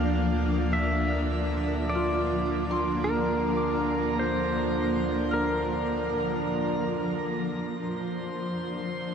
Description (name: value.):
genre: ambient.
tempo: 52 BPM.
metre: 4/4.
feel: straight.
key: unclear.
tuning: A4 = 441 Hz.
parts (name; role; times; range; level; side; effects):
pedal steel guitar; melody; 0.0-7.0 s; Bb4 to F5; -31 LUFS; right 1 dB; tape echo.
granular cloud pad; sustained chords; 0.0-9.1 s; F3 to D5; -28 LUFS; equal; built-in reverb.
Celtic harp; arpeggios; 0.0-9.1 s; D4 to F6; -36 LUFS; equal; tape echo.
deep rumbling drone; bass; 0.0-9.1 s; D2; -33 LUFS; equal; built-in reverb.
hand-pumped harmonium; drone; 0.0-9.1 s; D3 to D4; -36 LUFS; equal; none.
drifting glass-harmonics texture; texture; 7.8-9.1 s; C5 to C6; -37 LUFS; left 2 dB; chorus, built-in reverb.
room: wet shimmer reverb, RT60 6.6 s.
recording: none.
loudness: -25 LUFS.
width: side -7 dB against mid.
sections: 0.0-7.7 A section; 7.7-9.1 B section.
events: none.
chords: 0.0 Bb/D; 7.7 Dm7.